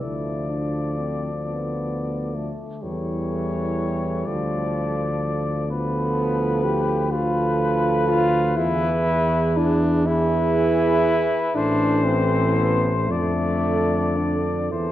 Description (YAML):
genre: classical, hymn-like piece for brass band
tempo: 36-43 BPM (dotted quarters)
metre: 6/8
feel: rubato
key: unclear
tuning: A4 = 440 Hz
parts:
  - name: warm flugelhorn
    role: melody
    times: 0.0-14.9 s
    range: B4 to D5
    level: -28 LUFS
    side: left 4 dB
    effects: none
  - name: mellow French horn section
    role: second line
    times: 0.0-14.9 s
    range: G#4 to A4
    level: -28 LUFS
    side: right 6 dB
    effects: none
  - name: clear trombone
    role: accompaniment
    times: 0.0-14.9 s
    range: D3 to F3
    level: -30 LUFS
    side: right 2 dB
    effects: none
  - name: warm euphonium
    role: accompaniment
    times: 0.0-14.9 s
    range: G3 to G4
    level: -25 LUFS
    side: left 1 dB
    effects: none
  - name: mellow tuba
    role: bass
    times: 0.0-14.9 s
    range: A1 to F2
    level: -24 LUFS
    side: equal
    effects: none
room: wet concert hall reverb, RT60 1.9 s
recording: worn, warbling old tape, cassette tape, warbly pitch drift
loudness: -20 LUFS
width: side -13 dB against mid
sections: 0.0-14.9 A section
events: none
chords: 0.0 Dm; 2.8 A7/E; 4.3 Dm; 5.7 Bm7b5/D; 8.6 E; 11.6 Am; 13.1 Dm/F